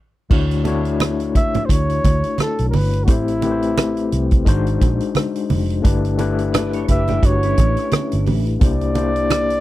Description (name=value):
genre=lush 1970s-style soul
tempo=87 BPM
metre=4/4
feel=swing 58% on 16ths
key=D major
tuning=A4 = 440 Hz
part: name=overdriven tine electric piano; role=accompaniment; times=0.3-9.6 s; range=G#3 to C#5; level=-22 LUFS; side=left 6 dB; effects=fast tremolo
part: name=vintage muted fingered electric bass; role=bass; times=0.3-9.6 s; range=F1 to D2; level=-21 LUFS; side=equal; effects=tube saturation
part: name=vintage drum kit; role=drums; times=0.3-9.6 s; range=crash cymbal, hi-hat, kick drum, rim click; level=-17 LUFS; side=right 1 dB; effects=none
part: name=congas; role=percussion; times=0.3-9.5 s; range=none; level=-24 LUFS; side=right 5 dB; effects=none
part: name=breathy flugelhorn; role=melody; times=1.4-9.6 s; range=E4 to E5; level=-22 LUFS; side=equal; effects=none
part: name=electric guitar through a small old amp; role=riff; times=6.5-8.4 s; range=C#4 to D5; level=-28 LUFS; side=right 7 dB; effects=ensemble chorus
room=little or no reverb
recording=dry, close 1970s-style studio recording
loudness=-16 LUFS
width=side -15 dB against mid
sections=0.3-9.6 A section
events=stop 0.0-0.3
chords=0.3 Dmaj9; 3.1 Am7; 4.5 G#7#11; 5.9 G69; 8.6 C9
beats=| 0.30 1.00 1.69 2.39 | 3.08 3.77 4.47 5.16 | 5.85 6.54 7.24 7.93 | 8.62 9.31